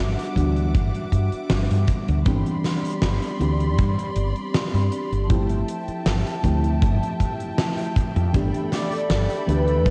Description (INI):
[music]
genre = vaporwave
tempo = 79 BPM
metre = 4/4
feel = straight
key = unclear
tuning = A4 = 440 Hz
[part]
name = mellow FM electric piano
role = accompaniment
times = 0.0-9.9 s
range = E3 to G4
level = -30 LUFS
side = equal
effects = phaser, subtle chorus, cassette tape, tape echo
[part]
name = dark studio string section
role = sustained chords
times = 0.0-9.9 s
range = F3 to D6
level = -33 LUFS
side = equal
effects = none
[part]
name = woody fretless electric bass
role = bass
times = 0.0-9.9 s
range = G1 to G2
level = -24 LUFS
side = equal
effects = none
[part]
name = gated 80s drum kit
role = drums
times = 0.2-9.9 s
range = hi-hat, snare drum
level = -29 LUFS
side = equal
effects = vintage 12-bit sampler grit
[part]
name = kick drum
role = drums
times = 0.4-9.9 s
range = none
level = -26 LUFS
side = equal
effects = vintage 12-bit sampler grit
[part]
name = warm velvety synth lead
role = melody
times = 8.7-9.9 s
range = B4 to D5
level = -27 LUFS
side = equal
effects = chorus, cassette tape, tape echo
[sound]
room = moderate lush hall reverb, RT60 2.4 s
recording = dreamy mix soaked in reverb, cassette tape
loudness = -22 LUFS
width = mono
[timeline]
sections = 0.0-9.9 A section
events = none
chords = 0.0 Em9/G; 2.3 Cmaj9/G; 5.3 Fmaj9/G; 8.3 G69